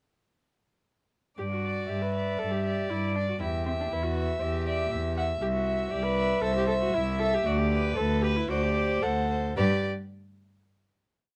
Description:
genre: quick classical-period movement for string quartet.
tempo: 117 BPM.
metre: 4/4.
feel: straight.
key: G major.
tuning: A4 = 440 Hz.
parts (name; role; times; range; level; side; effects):
dark violin; second line; 1.4-9.9 s; G4 to F#5; -35 LUFS; equal; none.
warm viola; accompaniment; 1.4-9.9 s; C4 to B4; -35 LUFS; equal; none.
dark cello; bass; 1.4-9.9 s; C2 to G2; -32 LUFS; equal; none.
rich violin; melody; 1.6-9.9 s; B4 to E5; -35 LUFS; equal; none.
room: light reverb.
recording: dark, warm production.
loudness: -28 LUFS.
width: mono.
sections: 1.4-9.6 theme; 9.6-11.4 final chord.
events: none.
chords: 1.4 G5; 3.4 Em; 5.4 C; 7.5 D69; 8.5 D5; 9.6 N.C..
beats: | 1.38 1.89 2.40 2.91 | 3.41 3.92 4.42 4.92 | 5.42 5.92 6.43 6.94 | 7.46 7.97 8.50 9.03 | 9.57.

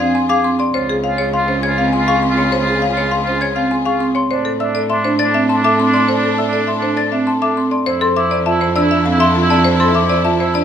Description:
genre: classical, minimalist pattern music.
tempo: 101 BPM.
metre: 3/4.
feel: straight.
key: unclear.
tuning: A4 = 440 Hz.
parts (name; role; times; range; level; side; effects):
buzzing marimba with hard mallets; melody; 0.0-10.6 s; G#4 to C6; -20 LUFS; left 3 dB; none.
clear oboe; second line; 0.0-10.6 s; D4 to Ab4; -21 LUFS; right 3 dB; none.
rich symphonic string section; sustained chords; 0.0-10.6 s; D4 to A4; -25 LUFS; left 4 dB; none.
marimba with soft mallets; arpeggios; 0.0-10.6 s; C4 to D5; -19 LUFS; right 3 dB; none.
xylophone with soft rubber mallets; arpeggios; 0.0-10.6 s; F5 to A6; -20 LUFS; left 4 dB; none.
rich cello; bass; 0.0-10.6 s; C#2 to A2; -22 LUFS; right 2 dB; none.
room: moderate large studio reverb, RT60 1.3 s.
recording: close, detailed microphones.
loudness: -13 LUFS.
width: side -9 dB against mid.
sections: 0.0-7.9 A section; 7.9-10.6 B section.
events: none.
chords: 0.0 Fm; 0.7 C#; 4.3 Asus4; 7.9 Fmaj7.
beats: 0.15 | 0.74 1.33 1.93 | 2.52 3.12 3.71 | 4.30 4.90 5.49 | 6.09 6.68 7.28 | 7.87 8.46 9.06 | 9.65 10.24.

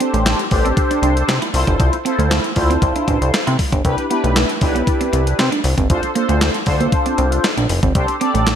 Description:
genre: early-eighties boogie funk.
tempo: 117 BPM.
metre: 4/4.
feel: straight.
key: C major.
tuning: A4 = 440 Hz.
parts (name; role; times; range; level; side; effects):
mellow synth brass; accompaniment; 0.0-8.6 s; D4 to D5; -20 LUFS; left 1 dB; chorus, phaser.
clean electric guitar; riff; 0.0-8.6 s; A3 to E4; -23 LUFS; right 7 dB; analog chorus.
crisp 8-bit digital drum machine; drums; 0.0-8.6 s; handclaps, hi-hat, kick drum, snare drum; -19 LUFS; equal; gated reverb.
chorused synth bass; bass; 0.1-8.6 s; F1 to C3; -18 LUFS; equal; none.
room: light reverb, digital ambience.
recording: bright 1980s-style digital production.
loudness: -14 LUFS.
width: side -9 dB against mid.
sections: 0.0-8.6 A section.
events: none.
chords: 0.0 Csus2/A; 1.5 Dm9; 3.8 Cmaj7; 5.9 Bbmaj9/C; 8.0 Csus2.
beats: 0.26 0.77 1.28 | 1.80 2.31 2.82 3.34 | 3.85 4.36 4.87 5.39 | 5.90 6.41 6.92 7.44 | 7.95 8.46.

